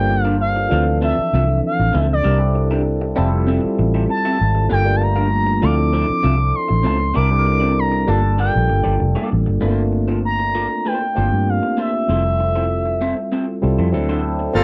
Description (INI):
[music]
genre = lush 1970s-style soul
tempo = 98 BPM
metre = 4/4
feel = straight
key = G dorian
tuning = A4 = 443 Hz
[part]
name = expressive portamento lead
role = melody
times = 0.0-13.9 s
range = D5 to D6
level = -23 LUFS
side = equal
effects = chorus
[part]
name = barky tine electric piano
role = accompaniment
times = 0.0-14.6 s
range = E3 to C5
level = -24 LUFS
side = equal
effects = phaser
[part]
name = vintage muted fingered electric bass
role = bass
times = 0.0-14.6 s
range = F1 to G2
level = -21 LUFS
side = equal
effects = none
[part]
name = electric guitar through a small old amp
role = riff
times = 0.1-14.6 s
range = A3 to F5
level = -29 LUFS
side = equal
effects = phaser
[part]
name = accordion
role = sustained chords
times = 14.6 s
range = C3 to A4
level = -18 LUFS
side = equal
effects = none
[sound]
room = little or no reverb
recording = dry, close 1970s-style studio recording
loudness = -18 LUFS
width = mono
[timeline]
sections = 0.0-9.6 A section; 9.6-14.6 B section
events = none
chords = 0.0 Gm7; 0.7 Dm9; 2.2 C9; 3.2 Fmaj9; 4.7 Gm7; 5.6 Dm9; 7.2 C9; 8.1 Gm9; 9.6 Gm11; 12.1 Fmaj7; 13.9 D7